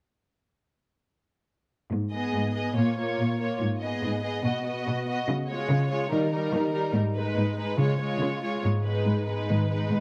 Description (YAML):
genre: cinematic, heroic adventure film score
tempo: 142 BPM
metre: 4/4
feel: straight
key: G# dorian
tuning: A4 = 441 Hz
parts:
  - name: warm symphonic cello section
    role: bass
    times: 1.9-10.0 s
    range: G#2 to D#3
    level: -30 LUFS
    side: equal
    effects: none
  - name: rich symphonic violin section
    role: melody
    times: 2.1-10.0 s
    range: A#4 to D#5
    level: -35 LUFS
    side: equal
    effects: none
  - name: dark symphonic violin section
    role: second line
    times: 2.1-10.0 s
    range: D#4 to G#4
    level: -36 LUFS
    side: equal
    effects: none
  - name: warm studio viola section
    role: accompaniment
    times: 2.1-10.0 s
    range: G3 to B3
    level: -35 LUFS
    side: equal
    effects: none
  - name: concert harp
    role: arpeggios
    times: 8.6-10.0 s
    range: G#2 to B4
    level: -31 LUFS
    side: equal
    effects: none
room: moderate scoring stage reverb, RT60 1.9 s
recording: none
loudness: -27 LUFS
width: mono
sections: 1.9-8.6 A section; 8.6-10.0 B section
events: build-up 8.6-10.0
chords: 1.9 G#m; 2.8 A#m; 3.6 G#m; 4.4 B; 5.3 C#; 6.1 D#; 6.9 G#m; 7.8 C#; 8.6 G#m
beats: | 1.91 2.34 2.76 3.18 | 3.60 4.03 4.44 4.86 | 5.28 5.70 6.11 6.53 | 6.95 7.37 7.79 8.22 | 8.64 9.07 9.49 9.91